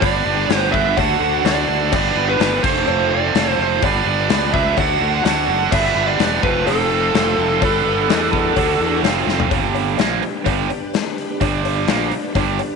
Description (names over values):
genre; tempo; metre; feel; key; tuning
classic rock; 126 BPM; 4/4; straight; G mixolydian; A4 = 444 Hz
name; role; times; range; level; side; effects
fuzz lead guitar; melody; 0.0-9.0 s; A4 to F#5; -20 LUFS; equal; distortion, slapback echo
string machine, full ensemble; sustained chords; 0.0-12.8 s; C4 to Eb5; -28 LUFS; left 2 dB; ensemble chorus
overdriven electric guitar; riff; 0.0-12.6 s; G2 to B4; -19 LUFS; right 13 dB; none
fuzz fingered electric bass; bass; 0.0-12.6 s; E1 to E2; -24 LUFS; left 1 dB; overdrive
big rock drum kit; drums; 0.0-12.7 s; crash cymbal, hi-hat, kick drum, snare drum, toms; -22 LUFS; left 6 dB; none
cowbell; percussion; 0.0-12.7 s; none; -28 LUFS; left 16 dB; none
room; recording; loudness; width
light reverb; 1960s-style stereo with parts hard left and right, nothing above 11.0 kHz; -15 LUFS; side -5 dB against mid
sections
0.0-9.5 A section; 9.5-12.8 B section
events
drum fill 9.3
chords
0.0 G; 1.0 D; 1.9 G; 2.6 F; 3.8 G; 4.8 D; 5.7 G; 6.4 F; 7.6 G; 8.6 D; 9.0 F; 9.5 G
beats
| 0.02 0.50 0.97 1.45 | 1.92 2.40 2.87 3.35 | 3.82 4.30 4.77 5.25 | 5.72 6.20 6.67 7.15 | 7.62 8.09 8.57 9.04 | 9.52 9.99 10.46 10.94 | 11.41 11.88 12.35